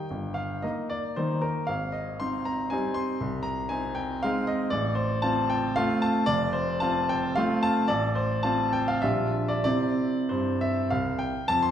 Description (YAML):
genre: classical, romantic triple-time dance for piano with dotted rhythms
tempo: 91-130 BPM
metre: 3/4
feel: rubato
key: F major from 4.7 s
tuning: A4 = 441 Hz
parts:
  - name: clear baby grand piano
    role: solo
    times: 0.0-11.7 s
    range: F1 to C6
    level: -24 LUFS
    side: equal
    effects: none
room: wet recital hall reverb, RT60 1.6 s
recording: heard from further back in the room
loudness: -24 LUFS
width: side -9 dB against mid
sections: 0.0-11.5 A section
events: none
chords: 0.1 Eb/G; 1.7 Abmaj7; 3.2 Ab/C; 4.7 F/A; 6.3 F; 7.9 F/A; 9.0 Gm7/Bb; 9.6 C